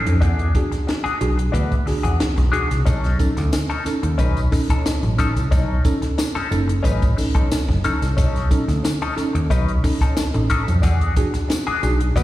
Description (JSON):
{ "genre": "funk", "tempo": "90 BPM", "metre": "4/4", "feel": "straight", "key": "B mixolydian", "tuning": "A4 = 441 Hz", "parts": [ { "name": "semi-hollow electric guitar", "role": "accompaniment", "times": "0.0-12.2 s", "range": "C#4 to B4", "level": "-26 LUFS", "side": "left 4 dB", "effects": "wah, slapback echo" }, { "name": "mellow tine electric piano", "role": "stabs", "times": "0.0-12.2 s", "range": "B2 to A4", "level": "-26 LUFS", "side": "right 2 dB", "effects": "medium stereo tremolo, slapback echo" }, { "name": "picked electric bass", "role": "bass", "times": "0.1-12.2 s", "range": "F#1 to E#2", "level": "-20 LUFS", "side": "equal", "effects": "none" }, { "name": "compact cocktail drum kit", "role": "drums", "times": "0.1-12.2 s", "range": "hi-hat, kick drum, snare drum", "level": "-21 LUFS", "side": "equal", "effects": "none" }, { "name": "tambourine", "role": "percussion", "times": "2.9-12.2 s", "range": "none", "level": "-38 LUFS", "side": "left 4 dB", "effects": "none" } ], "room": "light reverb, small room ambience", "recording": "live gig heard through the venue's PA, recital hall reverb", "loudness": "-17 LUFS", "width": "side -15 dB against mid", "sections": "0.0-12.2 A section", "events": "none", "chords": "0.2 E9; 2.9 B9; 10.8 E9" }